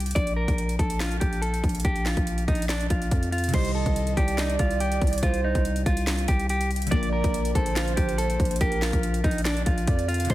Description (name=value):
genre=hip hop, trap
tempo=142 BPM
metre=4/4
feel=half-time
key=unclear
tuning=A4 = 438 Hz
part: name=growling 808-style bass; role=bass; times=0.0-10.3 s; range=Bb1 to F2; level=-26 LUFS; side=equal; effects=none
part: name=trap drum kit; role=drums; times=0.0-10.3 s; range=crash cymbal, finger snaps, hi-hat, kick drum, snare drum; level=-26 LUFS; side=equal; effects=overdrive
part: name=clean electric guitar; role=melody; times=0.2-10.3 s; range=D4 to D5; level=-30 LUFS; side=equal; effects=spring reverb, ping-pong delay
part: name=breathy flute-like synth lead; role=second line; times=3.5-10.3 s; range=Bb4 to F5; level=-32 LUFS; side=right 5 dB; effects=chorus, ping-pong delay
part: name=glassy digital keys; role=accompaniment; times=3.5-10.3 s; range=C3 to Bb4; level=-35 LUFS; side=left 2 dB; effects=chorus
room=digital ambience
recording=dense, heavily limited modern master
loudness=-22 LUFS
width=side -15 dB against mid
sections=0.0-3.5 A section; 3.5-10.3 B section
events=none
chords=0.2 Bb5; 3.5 Cm; 6.9 Bb